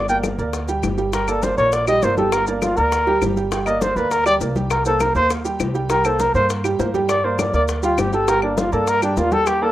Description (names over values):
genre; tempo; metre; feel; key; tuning
Afro-Cuban jazz; 202 BPM; 4/4; straight; G minor; A4 = 440 Hz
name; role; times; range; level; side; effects
mellow trumpet; melody; 0.0-9.7 s; D4 to G5; -19 LUFS; left 1 dB; none
upright bass; bass; 0.0-9.7 s; G1 to G2; -25 LUFS; equal; none
clear upright piano; accompaniment; 0.1-9.7 s; G3 to G5; -22 LUFS; right 4 dB; plate reverb
congas; percussion; 0.1-9.7 s; none; -29 LUFS; left 3 dB; none
maracas; percussion; 0.1-9.6 s; none; -36 LUFS; left 7 dB; none
bongos; percussion; 0.2-9.6 s; none; -29 LUFS; left 6 dB; none
claves; percussion; 0.2-9.6 s; none; -29 LUFS; left 6 dB; none
room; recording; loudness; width
light reverb; rough home demo mix; -16 LUFS; side -14 dB against mid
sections
0.0-9.7 A section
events
trumpet solo 0.0-9.7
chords
0.0 Gm; 4.7 Cm7; 7.1 Gm